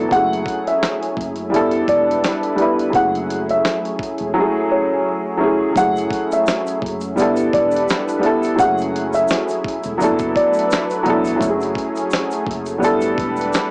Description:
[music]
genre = lo-fi hip hop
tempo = 85 BPM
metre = 4/4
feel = swing 57% on 16ths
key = F# minor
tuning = A4 = 440 Hz
[part]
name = warm upright piano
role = accompaniment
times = 0.0-13.7 s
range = F#3 to B4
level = -22 LUFS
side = equal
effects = cassette tape, low-pass filter
[part]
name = lush unison pad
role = sustained chords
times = 0.0-13.7 s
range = F#3 to B4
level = -27 LUFS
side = equal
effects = chorus, low-pass filter, cassette tape
[part]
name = woody fretless electric bass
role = bass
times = 0.0-13.5 s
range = E1 to G1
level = -34 LUFS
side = equal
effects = none
[part]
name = felt-muted upright piano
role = melody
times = 0.1-10.7 s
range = C#5 to F#5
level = -22 LUFS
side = equal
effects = low-pass filter, cassette tape, tape echo
[part]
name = dusty soul sampler-style drum kit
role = drums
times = 0.1-13.7 s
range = hi-hat, kick drum, snare drum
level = -27 LUFS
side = equal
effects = cassette tape
[part]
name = egg shaker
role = percussion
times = 5.8-13.7 s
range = none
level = -44 LUFS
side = equal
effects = none
[sound]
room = moderate booth ambience, RT60 0.2 s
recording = home recording on cassette, small speaker sound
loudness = -18 LUFS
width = mono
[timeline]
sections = 0.0-5.8 A section; 5.8-13.7 A section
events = none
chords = 0.1 F#m9; 1.5 G69; 2.9 F#m9; 7.2 G69; 8.6 F#m9; 10.0 D69/F#; 11.4 F#m9; 12.8 G69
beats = | 0.12 0.82 1.53 2.23 | 2.94 3.64 4.35 5.06 | 5.76 6.47 7.17 7.88 | 8.59 9.29 10.00 10.70 | 11.41 12.12 12.82 13.53

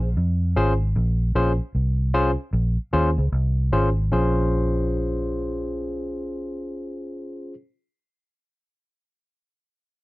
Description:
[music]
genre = lovers rock reggae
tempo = 76 BPM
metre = 4/4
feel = swing 62% on 16ths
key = Bb minor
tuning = A4 = 440 Hz
[part]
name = barky tine electric piano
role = accompaniment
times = 0.0-7.5 s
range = Db4 to C5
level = -24 LUFS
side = left 1 dB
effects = overdrive
[part]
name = vintage muted fingered electric bass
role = bass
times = 0.0-7.5 s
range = Ab1 to F2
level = -22 LUFS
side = equal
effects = none
[sound]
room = little or no reverb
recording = dry, close 1970s-style studio recording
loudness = -20 LUFS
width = side -20 dB against mid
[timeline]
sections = 0.0-4.1 A section; 4.1-7.3 B section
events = none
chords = 0.0 Bbm7; 1.0 Bbm9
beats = 0.17 | 0.96 1.75 2.54 3.33 | 4.12 4.91 5.70 6.48

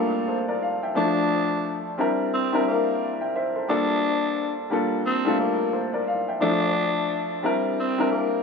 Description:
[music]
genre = hip hop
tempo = 88 BPM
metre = 4/4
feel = swing 58% on 16ths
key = unclear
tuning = A4 = 441 Hz
[part]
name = growling tenor saxophone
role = melody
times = 0.0-8.4 s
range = Bb3 to D4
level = -26 LUFS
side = left 1 dB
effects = high-pass filter, low-pass filter, digital delay
[part]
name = warm upright piano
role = accompaniment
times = 0.0-8.4 s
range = F3 to G5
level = -24 LUFS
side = left 2 dB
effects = cassette tape, high-pass filter, low-pass filter
[sound]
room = moderate plate reverb, RT60 3.4 s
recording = none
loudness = -22 LUFS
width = side -5 dB against mid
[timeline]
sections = 0.0-8.4 A section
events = none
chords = 0.0 Gm7; 1.0 Dm; 2.0 C7; 3.7 Gm7; 6.4 Dm; 7.4 C7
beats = 0.28 | 0.97 1.65 2.33 3.01 | 3.69 4.38 5.06 5.74 | 6.42 7.10 7.78

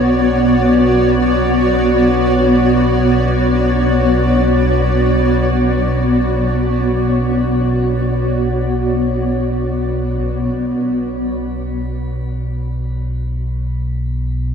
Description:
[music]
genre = dark ambient drone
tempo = free time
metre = none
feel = none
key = B minor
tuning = A4 = 440 Hz
[part]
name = granular cloud pad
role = sustained chords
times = 0.0-10.2 s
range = B3 to D5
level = -14 LUFS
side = equal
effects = built-in reverb, shimmer reverb
[part]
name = deep rumbling drone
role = drone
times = 0.0-14.5 s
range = B1 to B2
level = -18 LUFS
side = right 1 dB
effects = built-in reverb, analog chorus
[sound]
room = wet lush hall reverb, RT60 2.7 s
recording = dreamy mix soaked in reverb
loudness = -13 LUFS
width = side -7 dB against mid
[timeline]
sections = 0.0-10.2 A section; 10.2-14.5 B section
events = none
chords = 0.0 Bm; 10.2 N.C.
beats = free time

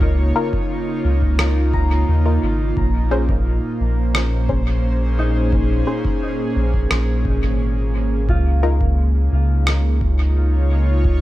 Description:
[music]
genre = ambient dub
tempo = 87 BPM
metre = 4/4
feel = straight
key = Bb minor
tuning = A4 = 440 Hz
[part]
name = airy breathy pad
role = sustained chords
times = 0.0-11.2 s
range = Bb2 to Db5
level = -23 LUFS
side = right 1 dB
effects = chorus
[part]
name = concert harp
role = arpeggios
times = 0.0-10.9 s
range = Eb4 to Bb5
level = -31 LUFS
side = left 2 dB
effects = dub echo
[part]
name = soft dub sub bass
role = bass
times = 0.0-11.2 s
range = Ab1 to Eb2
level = -17 LUFS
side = equal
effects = none
[part]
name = electronic kick drum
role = drums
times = 0.0-11.2 s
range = none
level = -23 LUFS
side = equal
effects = none
[part]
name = filtered dub chord stab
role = stabs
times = 0.4-8.8 s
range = Db4 to C5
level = -28 LUFS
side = left 4 dB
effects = chorus, vintage 12-bit sampler grit, dub echo
[part]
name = electronic rim click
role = drums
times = 1.4-9.8 s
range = none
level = -24 LUFS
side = equal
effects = overdrive, dub echo
[sound]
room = digital ambience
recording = echo-heavy mix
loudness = -16 LUFS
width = side -16 dB against mid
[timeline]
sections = 0.0-11.2 A section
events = none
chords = 0.0 Db69; 2.8 Bbm9; 8.3 Db69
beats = | 0.01 0.70 1.39 2.08 | 2.77 3.46 4.15 4.84 | 5.53 6.22 6.91 7.60 | 8.29 8.98 9.67 10.36 | 11.05

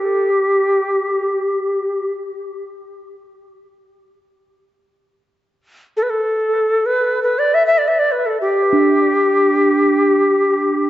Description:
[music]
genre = world meditative, free-time meditation music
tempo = free time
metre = none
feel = none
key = G major pentatonic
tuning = A4 = 440 Hz
[part]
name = bright reedy Native American-style cedar flute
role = melody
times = 0.0-10.9 s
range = G4 to E5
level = -15 LUFS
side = left 1 dB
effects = analog delay
[part]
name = bronze singing bowl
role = texture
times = 8.7-10.9 s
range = D4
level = -18 LUFS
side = right 3 dB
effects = none
[sound]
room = wet spring reverb, RT60 1.2 s, studio ambience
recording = echo-heavy mix, cassette tape, nothing above 7.9 kHz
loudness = -14 LUFS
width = side -13 dB against mid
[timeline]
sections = 0.0-10.9 A section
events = none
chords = none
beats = free time

